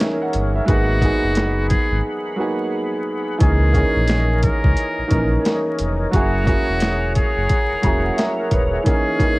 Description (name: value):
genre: hip hop, boom-bap hip-hop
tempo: 88 BPM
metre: 4/4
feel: swing 61% on 16ths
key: C# dorian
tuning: A4 = 442 Hz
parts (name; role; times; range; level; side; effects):
- warm upright piano; accompaniment; 0.0-9.4 s; E3 to A#5; -22 LUFS; right 1 dB; high-pass filter, low-pass filter, cassette tape
- tonewheel organ; sustained chords; 0.0-9.4 s; G#4 to B5; -27 LUFS; left 1 dB; overdrive, chorus vibrato, slow rotary speaker, high-pass filter, low-pass filter, cassette tape
- boom bap sampler-style drum kit; drums; 0.0-9.4 s; hi-hat, kick drum, snare drum; -19 LUFS; equal; overdrive, cassette tape
- sub bass with octave; bass; 0.3-8.8 s; D#1 to C#2; -20 LUFS; equal; none
- trumpet with metal mute; melody; 0.7-9.4 s; F#4 to A#4; -25 LUFS; equal; high-pass filter, low-pass filter, cassette tape
room: digital ambience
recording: home recording on cassette, vinyl crackle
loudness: -16 LUFS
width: side -22 dB against mid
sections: 0.0-9.4 A section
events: break 2.0-3.4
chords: 0.0 C#m69/E; 0.7 G#m7; 3.4 C#m69; 6.1 F#9; 8.9 C#m69/E